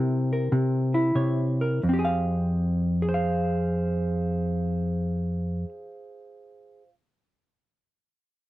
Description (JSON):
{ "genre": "solo jazz", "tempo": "84 BPM", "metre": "4/4", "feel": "swing 67% on 8ths", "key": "F minor", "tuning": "A4 = 439 Hz", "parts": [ { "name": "hollow-body jazz guitar", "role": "solo", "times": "0.0-6.9 s", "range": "F2 to F5", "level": "-24 LUFS", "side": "equal", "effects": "none" } ], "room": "light reverb", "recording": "dry, close 1970s-style studio recording", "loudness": "-23 LUFS", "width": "side -16 dB against mid", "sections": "0.0-1.8 A section; 1.8-7.5 B section", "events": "slowing down 0.0-1.8", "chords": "0.0 C7b9; 1.8 Fmadd9", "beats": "0.50 1.14 | 1.83 2.54 3.26 3.97 | 4.69 5.40 6.12 6.83" }